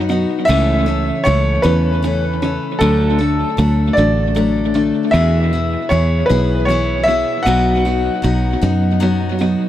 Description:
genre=rock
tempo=52 BPM (dotted quarters)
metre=6/8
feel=straight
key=E major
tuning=A4 = 440 Hz
part: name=warm grand piano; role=melody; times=0.0-9.3 s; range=A4 to F#5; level=-19 LUFS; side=equal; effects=tape echo
part: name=picked steel-string acoustic guitar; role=accompaniment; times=0.0-9.7 s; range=B2 to A4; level=-21 LUFS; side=left 4 dB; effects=tape echo
part: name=electric guitar through a small old amp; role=riff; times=0.0-9.7 s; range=E2 to D4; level=-20 LUFS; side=right 1 dB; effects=tape echo
part: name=fingered electric bass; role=bass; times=0.0-9.6 s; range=A1 to F#2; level=-17 LUFS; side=equal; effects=none
room=light reverb, small room ambience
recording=echo-heavy mix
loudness=-13 LUFS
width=side -12 dB against mid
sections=0.0-9.7 A section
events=none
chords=0.5 A/C#; 2.8 D; 5.1 E; 7.5 B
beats=| 0.49 1.65 | 2.81 3.98 | 5.14 6.30 | 7.47 8.63

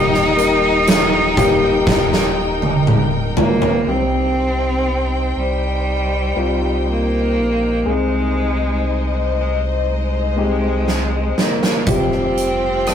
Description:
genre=pop ballad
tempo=60 BPM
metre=4/4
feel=straight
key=C minor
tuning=A4 = 439 Hz
part: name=bright cello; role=melody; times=0.0-12.9 s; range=G3 to Eb4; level=-20 LUFS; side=right 1 dB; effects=tape echo
part: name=warm concert grand piano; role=accompaniment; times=0.0-12.9 s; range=C3 to Bb4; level=-21 LUFS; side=left 3 dB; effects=none
part: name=warm studio string section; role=sustained chords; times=0.0-12.9 s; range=Eb4 to G5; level=-24 LUFS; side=left 4 dB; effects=none
part: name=sub bass with octave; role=bass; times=0.0-12.9 s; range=Eb1 to C2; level=-22 LUFS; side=right 1 dB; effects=none
part: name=huge arena drum kit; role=drums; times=0.1-3.9, 10.9-12.9 s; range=hi-hat, kick drum, rim click, snare drum, toms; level=-18 LUFS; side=right 2 dB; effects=none
room=light reverb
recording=rough rehearsal-room recording, warm saturation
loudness=-15 LUFS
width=side -8 dB against mid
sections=0.0-3.9 A section; 3.9-12.9 B section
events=drum fill 1.9-3.9, 10.9-11.9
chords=0.0 Eb; 3.9 Cm; 7.9 Ab/C; 11.9 Fsus2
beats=0.87 1.87 2.87 | 3.87 4.87 5.87 6.87 | 7.87 8.87 9.87 10.87 | 11.87 12.87

